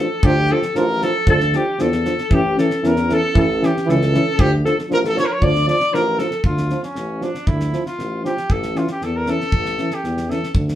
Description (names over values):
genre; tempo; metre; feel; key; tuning
balkan folk, Balkan brass band; 116 BPM; 2/4; straight; D harmonic minor; A4 = 442 Hz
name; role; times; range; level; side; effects
warm trumpet; melody; 0.0-10.6 s; C#4 to D5; -22 LUFS; equal; none
clear alto saxophone; second line; 0.0-6.4 s; G4 to D5; -22 LUFS; left 1 dB; none
mellow euphonium; accompaniment; 0.0-10.4 s; C#4 to D4; -25 LUFS; left 4 dB; none
warm trombone; accompaniment; 0.0-10.4 s; E3 to F3; -23 LUFS; right 3 dB; none
warm tuba; bass; 0.2-10.8 s; A1 to E2; -22 LUFS; equal; none
damped 70s drum kit; percussion; 0.2-10.7 s; kick drum, snare drum; -21 LUFS; equal; none
room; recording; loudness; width
wet studio reverb, RT60 0.6 s; heard from further back in the room; -16 LUFS; side -12 dB against mid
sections
0.0-6.4 A section; 6.4-10.8 B section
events
trumpet solo 6.4-10.8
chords
0.0 Dm; 2.3 A; 4.4 Dm; 8.5 A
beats
| 0.24 0.76 | 1.28 1.80 | 2.31 2.83 | 3.35 3.87 | 4.38 4.90 | 5.42 5.93 | 6.45 6.96 | 7.47 7.99 | 8.50 9.01 | 9.52 10.03 | 10.54